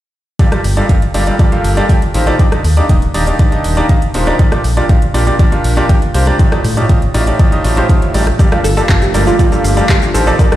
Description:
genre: progressive house.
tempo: 120 BPM.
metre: 4/4.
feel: straight.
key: G minor.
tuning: A4 = 440 Hz.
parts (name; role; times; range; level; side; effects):
bright grand piano; stabs; 0.4-10.6 s; G2 to G5; -15 LUFS; right 1 dB; sidechain pumping, dub echo.
big-room dance drum kit; drums; 0.4-10.6 s; cabasa, handclaps, hi-hat, rim click; -23 LUFS; equal; overdrive.
electronic kick drum; drums; 0.4-10.5 s; none; -11 LUFS; equal; none.
round analog bass; bass; 0.6-10.3 s; Eb1 to A2; -14 LUFS; equal; sidechain pumping.
warm analog pad; sustained chords; 8.4-10.6 s; Eb3 to G4; -19 LUFS; equal; wide subtle chorus, sidechain pumping.
analog pluck; arpeggios; 8.4-10.5 s; F4 to F5; -17 LUFS; right 2 dB; chorus, phaser, cassette tape, sidechain pumping, dub echo.
room: light reverb.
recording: played on a big sound system in a bare room, large studio reverb.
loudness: -9 LUFS.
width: side -14 dB against mid.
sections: 0.4-10.6 A section.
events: none.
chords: 0.4 Gm9; 2.4 Ebmaj7; 4.4 Bb6; 6.4 F13/A; 8.4 Gm9.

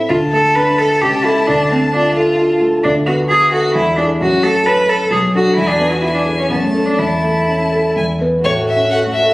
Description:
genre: quick classical-period movement for piano trio.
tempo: 130 BPM.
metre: 3/4.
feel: rubato.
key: A major.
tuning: A4 = 439 Hz.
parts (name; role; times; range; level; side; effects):
rich violin; melody; 0.0-9.3 s; C#5 to A5; -20 LUFS; left 1 dB; none.
dark concert grand piano; accompaniment; 0.0-9.3 s; B1 to C5; -16 LUFS; equal; none.
clear cello; second line; 0.1-9.3 s; A3 to B4; -15 LUFS; equal; none.
room: wet recital hall reverb, RT60 1.4 s.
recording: recorded on a phone in the room, studio reverb, compression.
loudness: -12 LUFS.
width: side -20 dB against mid.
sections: 0.0-8.4 A section.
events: none.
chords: 0.1 D5; 1.0 A7/C#; 1.5 Dm; 2.8 Bm7/D; 3.7 E; 4.2 F#m; 5.1 Bm7; 5.6 E; 6.5 F#m; 7.0 A/E; 8.0 E5; 8.4 A.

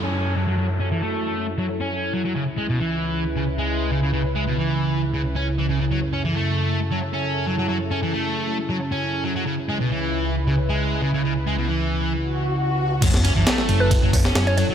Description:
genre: breakbeat, breaks.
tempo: 135 BPM.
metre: 4/4.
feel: straight.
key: F# minor.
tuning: A4 = 440 Hz.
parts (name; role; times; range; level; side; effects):
phased analog pad; sustained chords; 0.0-14.7 s; C#2 to B4; -24 LUFS; equal; phaser, chorus, vintage 12-bit sampler grit, sidechain pumping.
sludgy distorted guitar; riff; 0.0-14.7 s; B2 to C#4; -24 LUFS; equal; overdrive, vintage 12-bit sampler grit, low-pass filter, digital delay.
downlifter, swell and sub drop; sound effects; 0.0-2.4, 12.3-14.7 s; none; -30 LUFS; left 1 dB; none.
hollow-body short-scale fingered electric bass; bass; 13.0-14.6 s; F#1 to F#2; -20 LUFS; equal; none.
breakbeat sampler-style drum kit; drums; 13.0-14.7 s; crash cymbal, hi-hat, kick drum, ride cymbal, snare drum; -20 LUFS; equal; none.
mallet-like synth pluck; melody; 13.8-14.7 s; B4 to C#5; -25 LUFS; right 1 dB; chorus, phaser, AM radio sound, digital delay.
room: moderate lush hall reverb, RT60 1.5 s, digital ambience.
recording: none.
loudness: -20 LUFS.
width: side -8 dB against mid.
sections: 0.0-13.0 A section; 13.0-14.7 B section.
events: swell 12.3-13.0; drop 13.0-14.7; impact 13.0-14.7.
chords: 0.0 F#m7; 2.4 C#m7; 5.9 F#m7; 9.5 C#m7; 13.0 F#m7.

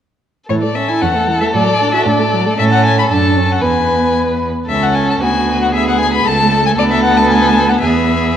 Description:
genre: quick classical-period movement for string quartet.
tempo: 114 BPM.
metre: 2/4.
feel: straight.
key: A major.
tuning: A4 = 440 Hz.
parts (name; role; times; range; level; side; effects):
rich violin; melody; 0.5-8.4 s; C#5 to B5; -16 LUFS; left 6 dB; none.
rich violin; second line; 0.5-8.4 s; F#4 to B4; -17 LUFS; left 1 dB; none.
dark viola; accompaniment; 0.5-8.4 s; E3 to F#4; -17 LUFS; right 2 dB; none.
rich cello; bass; 0.5-8.4 s; C#2 to A2; -17 LUFS; right 3 dB; none.
room: wet recital hall reverb, RT60 1.7 s.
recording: worn, warbling old tape, cassette tape, warbly pitch drift.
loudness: -11 LUFS.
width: side -9 dB against mid.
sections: 0.5-8.4 A section.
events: none.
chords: 0.5 A; 1.5 D/A; 2.6 A; 3.1 D/F#; 3.6 E; 4.7 A/C#; 5.2 Bm/D; 6.3 A/C#; 6.8 Bm7/D; 7.8 E.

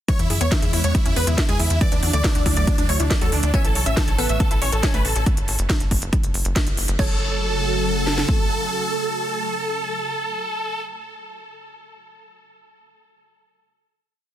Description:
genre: uplifting trance.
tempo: 139 BPM.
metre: 4/4.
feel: straight.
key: F# minor.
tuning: A4 = 439 Hz.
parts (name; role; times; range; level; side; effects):
big supersaw lead; melody; 0.1-10.8 s; D4 to E5; -26 LUFS; right 1 dB; phaser, sidechain pumping, digital delay.
warm concert grand piano; second line; 0.1-10.8 s; D4 to E5; -33 LUFS; equal; sidechain pumping, digital delay.
analog string pad; sustained chords; 0.4-10.8 s; A2 to A4; -30 LUFS; equal; ensemble chorus, phaser, sidechain pumping.
wide unison pluck; arpeggios; 0.1-7.2 s; E3 to C#5; -32 LUFS; left 3 dB; sidechain pumping, digital delay.
techno drum kit; drums; 0.1-8.4 s; kick drum, snare drum; -21 LUFS; equal; overdrive, small room ambience.
techno drum kit; drums; 0.1-7.1 s; crash cymbal, hi-hat, snare drum; -27 LUFS; equal; overdrive, small room ambience.
tight sequencer bass; bass; 0.2-8.2 s; F#1 to F#2; -23 LUFS; equal; sidechain pumping.
glassy wavetable pluck; second line; 3.5-10.8 s; B3 to C#5; -32 LUFS; equal; chorus, digital delay.
room: digital ambience.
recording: dense, heavily limited modern master.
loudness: -18 LUFS.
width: side -12 dB against mid.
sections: 0.1-7.0 drop; 7.0-10.4 final chord.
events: drop 0.1-7.0; band accent 6.6.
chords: 0.1 E6; 1.8 Dadd9; 3.5 A; 5.3 N.C.; 7.0 F#m.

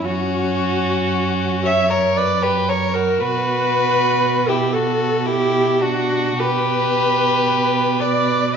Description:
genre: classical, slow romantic movement for string quartet.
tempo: 51-59 BPM.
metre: 3/4.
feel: rubato.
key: B minor.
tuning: A4 = 441 Hz.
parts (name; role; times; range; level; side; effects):
dark violin; melody; 0.0-8.6 s; F#4 to E5; -24 LUFS; left 11 dB; none.
warm violin; second line; 0.0-8.6 s; C#4 to C#5; -23 LUFS; left 4 dB; none.
dark viola; accompaniment; 0.0-8.6 s; F#4 to E5; -19 LUFS; right 2 dB; none.
warm cello; bass; 0.1-8.6 s; F#2 to B2; -23 LUFS; right 7 dB; none.
room: wet recital hall reverb, RT60 1.6 s.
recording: nothing above 7.5 kHz.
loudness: -16 LUFS.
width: side -7 dB against mid.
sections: 0.0-8.6 A section.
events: none.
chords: 0.1 F#5; 3.2 B5.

